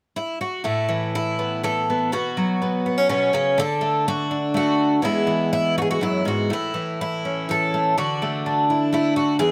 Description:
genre	folk, solo fingerstyle acoustic guitar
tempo	124 BPM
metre	3/4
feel	rubato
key	A major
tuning	A4 = 440 Hz
part	picked twelve-string acoustic guitar	solo	0.2-9.5 s	E2 to A4	-22 LUFS	equal	none
room	light reverb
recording	recorded outdoors, with no room sound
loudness	-22 LUFS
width	mono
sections	0.7-9.5 A section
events	none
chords	0.0 N.C.; 0.7 Asus2; 2.1 Bsus2; 3.6 D; 5.0 Eadd9; 6.5 A; 8.0 Dadd9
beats	0.16 | 0.65 1.15 1.64 | 2.13 2.61 3.09 | 3.57 4.05 4.54 | 5.02 5.51 6.00 | 6.50 7.00 7.48 | 7.97 8.45 8.93 | 9.40

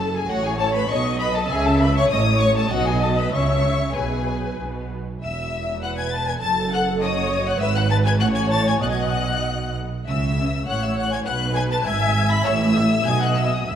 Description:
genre	quick classical-period movement for string orchestra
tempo	99 BPM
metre	2/4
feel	straight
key	E major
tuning	A4 = 441 Hz
part	clear chamber violin section	melody	0.0-13.8 s	F#5 to B6	-27 LUFS	left 5 dB	none
part	warm symphonic violin section	second line	0.0-13.8 s	F#4 to B5	-26 LUFS	left 4 dB	none
part	warm symphonic viola section	accompaniment	0.0-13.8 s	A4 to E5	-26 LUFS	right 1 dB	none
part	clear symphonic double bass section	bass	0.0-13.8 s	E1 to C#2	-24 LUFS	right 2 dB	none
part	dark symphonic cello section	bass	0.0-13.8 s	E2 to C#3	-25 LUFS	right 2 dB	none
room	moderate scoring stage reverb, RT60 2.0 s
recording	dark, warm production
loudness	-18 LUFS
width	side -9 dB against mid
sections	0.0-5.2 A section; 5.2-13.8 B section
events	none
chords	0.3 Amaj13; 0.9 B; 1.5 C#m; 2.1 A; 2.7 B; 3.3 C#m; 4.0 G#m/B; 4.6 N.C.; 5.2 E5; 6.4 F#m6; 7.6 F#m11/G#; 8.2 Amaj7; 8.8 B; 10.1 C#m; 10.7 A6; 11.3 B5; 11.9 E/G#; 12.5 A5; 13.1 B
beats	| 0.30 0.90 | 1.50 2.10 | 2.71 3.33 | 3.96 4.60 | 5.23 5.83 | 6.43 7.02 | 7.61 8.21 | 8.83 9.45 | 10.07 10.67 | 11.27 11.87 | 12.46 13.07 | 13.70

